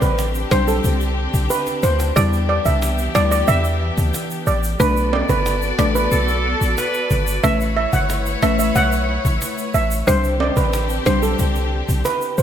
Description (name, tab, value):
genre	dancehall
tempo	91 BPM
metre	4/4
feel	straight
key	unclear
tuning	A4 = 440 Hz
part	steel pan	melody	0.0-12.4 s	A4 to F#5	-21 LUFS	right 3 dB	digital delay
part	mallet-like synth pluck	accompaniment	0.0-11.4 s	G3 to D5	-24 LUFS	left 3 dB	chorus
part	warm studio string section	sustained chords	0.0-12.4 s	D3 to D5	-25 LUFS	left 2 dB	none
part	hard-hitting 808-style bass	bass	0.0-12.4 s	G1 to E2	-20 LUFS	equal	none
part	cajon	drums	0.0-12.2 s	none	-28 LUFS	equal	none
part	egg shaker and timbales	percussion	0.0-12.4 s	none	-30 LUFS	right 3 dB	none
part	warm horn section	second line	6.1-7.2 s	A4 to B4	-24 LUFS	right 2 dB	digital delay
room	moderate lush hall reverb, RT60 2.5 s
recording	bright 1980s-style digital production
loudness	-16 LUFS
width	side -9 dB against mid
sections	0.0-12.4 A section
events	drum fill 1.5-2.2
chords	0.0 Csus2; 2.2 Em7; 4.8 Bm7; 7.4 Aadd9; 10.1 Csus2